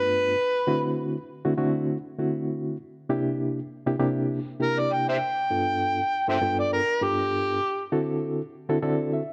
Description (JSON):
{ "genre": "blues", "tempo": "99 BPM", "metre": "4/4", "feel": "swing 56% on 16ths", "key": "unclear", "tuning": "A4 = 440 Hz", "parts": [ { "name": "overdriven harmonica", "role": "melody", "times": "0.0-1.0, 4.6-7.9 s", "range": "G4 to G5", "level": "-27 LUFS", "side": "equal", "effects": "slapback echo" }, { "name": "barky reed electric piano", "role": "accompaniment", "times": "0.0-9.3 s", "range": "G2 to E5", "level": "-29 LUFS", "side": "equal", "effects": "overdrive, fast tremolo" } ], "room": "moderate echo chamber reverb, RT60 2.0 s", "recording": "none", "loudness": "-26 LUFS", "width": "mono", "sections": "0.0-9.3 A section", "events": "reed electric piano fill 8.5-9.3", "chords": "0.0 G9; 0.7 D9; 3.1 C9; 5.5 G9; 7.9 D9" }